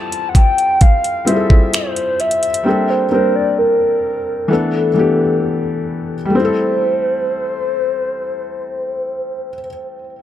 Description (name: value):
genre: contemporary R&B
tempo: 65 BPM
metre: 4/4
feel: straight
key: A minor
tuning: A4 = 437 Hz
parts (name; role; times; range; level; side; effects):
- hollow clarinet-like synth lead; melody; 0.0-9.6 s; A4 to A5; -18 LUFS; left 1 dB; chorus, phaser, analog delay
- felt-muted upright piano; accompaniment; 0.0-10.2 s; E3 to C5; -19 LUFS; left 2 dB; analog delay
- smooth R&B drum kit; drums; 0.1-2.6 s; finger snaps, hi-hat, kick drum; -12 LUFS; equal; none
room: moderate spring reverb, RT60 2.3 s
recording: echo-heavy mix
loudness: -14 LUFS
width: side -11 dB against mid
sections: 0.0-6.3 A section; 6.3-10.0 B section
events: none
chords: 0.0 Fmaj9; 2.7 Bbmaj13; 4.5 E7sus4; 6.3 Am7